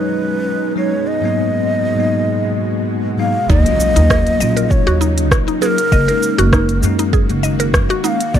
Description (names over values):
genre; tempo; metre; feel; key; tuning
organic downtempo; 99 BPM; 4/4; swing 54% on 16ths; Eb minor; A4 = 441 Hz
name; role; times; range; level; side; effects
breathy low ney; melody; 0.0-8.4 s; Bb4 to Gb5; -20 LUFS; left 2 dB; ping-pong delay
bell-like tine electric piano; accompaniment; 0.0-8.2 s; Ab2 to F4; -20 LUFS; left 1 dB; medium stereo tremolo, sidechain pumping
bowed-like drone; sustained chords; 0.0-8.4 s; F#2 to Gb4; -24 LUFS; right 3 dB; built-in reverb, sidechain pumping
mallet-like synth pluck; arpeggios; 3.5-8.2 s; Eb4 to Eb5; -21 LUFS; right 1 dB; chorus, ping-pong delay
upright bass; bass; 3.5-8.4 s; Gb1 to Gb2; -16 LUFS; equal; sidechain pumping
afro-pop drum kit; drums; 3.5-8.4 s; cabasa, hi-hat, rim click; -21 LUFS; right 1 dB; none
electronic kick drum; drums; 3.5-8.4 s; none; -16 LUFS; equal; none
impact; sound effects; 3.5-5.9 s; none; -22 LUFS; equal; none
room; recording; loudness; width
light reverb, digital ambience; dark, warm production; -13 LUFS; side -10 dB against mid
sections
0.0-3.5 A section; 3.5-8.4 B section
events
impact 3.5-5.9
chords
0.0 B69/F#; 1.1 Abm7; 3.5 Ebm7; 5.9 Gb69